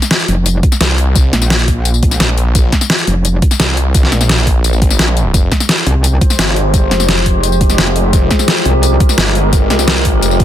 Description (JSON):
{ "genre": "dark technical drum and bass", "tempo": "172 BPM", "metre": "4/4", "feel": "straight", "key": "F minor", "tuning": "A4 = 444 Hz", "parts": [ { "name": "dubstep drum kit", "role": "drums", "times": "0.0-10.4 s", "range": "hi-hat, snare drum, tambourine", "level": "-14 LUFS", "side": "left 1 dB", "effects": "overdrive" }, { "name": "metallic wobble bass", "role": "bass", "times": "0.3-3.4, 5.9-9.0 s", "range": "F1 to C2", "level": "-13 LUFS", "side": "equal", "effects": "chorus" }, { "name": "electronic kick drum", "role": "drums", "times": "0.6-10.4 s", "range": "none", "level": "-12 LUFS", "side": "equal", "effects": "overdrive" }, { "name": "snarling distorted saw bass", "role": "bass", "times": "0.8-10.4 s", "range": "F1 to C2", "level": "-14 LUFS", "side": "equal", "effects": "distortion" }, { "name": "metallic inharmonic drone", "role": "sustained chords", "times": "5.9-10.4 s", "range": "F3 to C5", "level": "-16 LUFS", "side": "equal", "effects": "chorus, built-in reverb, vintage 12-bit sampler grit, sidechain pumping" } ], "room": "digital ambience", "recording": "dense, heavily limited modern master", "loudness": "-9 LUFS", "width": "side -11 dB against mid", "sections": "0.0-10.4 A section", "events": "none", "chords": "0.0 Bbsus2; 5.3 Fmadd9", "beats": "0.11 0.46 0.81 | 1.16 1.50 1.85 2.20 | 2.55 2.90 3.25 3.60 | 3.95 4.29 4.64 4.99 | 5.34 5.69 6.04 6.39 | 6.74 7.09 7.43 7.78 | 8.13 8.48 8.83 9.18 | 9.53 9.88 10.22" }